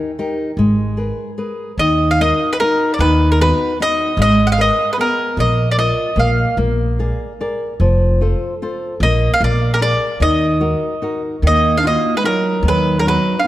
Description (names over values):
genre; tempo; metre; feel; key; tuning
italian folk, Italian serenade; 150 BPM; 3/4; swing 55% on 8ths, rubato; Eb harmonic minor; A4 = 441 Hz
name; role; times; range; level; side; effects
flamenco guitar; accompaniment; 0.0-13.5 s; Eb3 to Eb5; -20 LUFS; left 1 dB; none
upright bass; bass; 0.6-13.2 s; F1 to Eb2; -17 LUFS; equal; none
mandolin; melody; 1.8-6.6, 9.0-13.5 s; Bb4 to Gb5; -16 LUFS; equal; none
warm clarinet; second line; 11.5-13.4 s; Gb3 to D4; -19 LUFS; right 4 dB; none
room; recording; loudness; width
moderate concert hall reverb, RT60 2.1 s; none; -14 LUFS; side -14 dB against mid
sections
0.0-1.8 A section; 1.8-13.5 B section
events
none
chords
0.0 D#; 0.6 G#madd9; 1.8 Ebm; 3.0 B/D#; 4.2 Abmadd9; 5.4 Bbsus4; 6.2 Bb5; 6.6 Bb7; 7.8 F; 9.0 Eb5/Bb; 9.4 Bb7; 10.2 Ebm; 11.4 Ebmadd9; 12.6 B/D#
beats
0.18 | 0.58 0.98 1.38 | 1.79 2.20 2.60 | 3.00 3.40 3.79 | 4.18 4.58 4.97 | 5.37 5.77 6.17 | 6.58 6.99 7.39 | 7.80 8.21 8.61 | 9.01 9.40 9.80 | 10.20 10.60 11.01 | 11.43 11.84 12.24 | 12.64 13.05 13.45